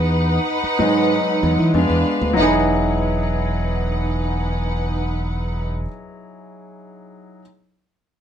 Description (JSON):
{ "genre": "soul", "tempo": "95 BPM", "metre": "4/4", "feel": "straight", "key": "E major", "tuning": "A4 = 440 Hz", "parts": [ { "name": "muted symphonic string section", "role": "second line", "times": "0.0-5.7 s", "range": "D4 to F#5", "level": "-22 LUFS", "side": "right 2 dB", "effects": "none" }, { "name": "clear grand piano", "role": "accompaniment", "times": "0.0-7.4 s", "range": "F#3 to G#4", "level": "-23 LUFS", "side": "left 1 dB", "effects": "none" }, { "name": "modern bright fingered electric bass", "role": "bass", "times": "0.0-5.9 s", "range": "E1 to E3", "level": "-21 LUFS", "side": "equal", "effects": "none" } ], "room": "moderate small room reverb, RT60 0.5 s", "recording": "band playing live in one room", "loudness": "-17 LUFS", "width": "side -9 dB against mid", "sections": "0.0-2.4 A section; 2.4-4.9 B section", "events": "grand piano solo 0.0-2.4", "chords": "0.0 Emaj9; 1.7 Fdim7; 2.4 Emaj9" }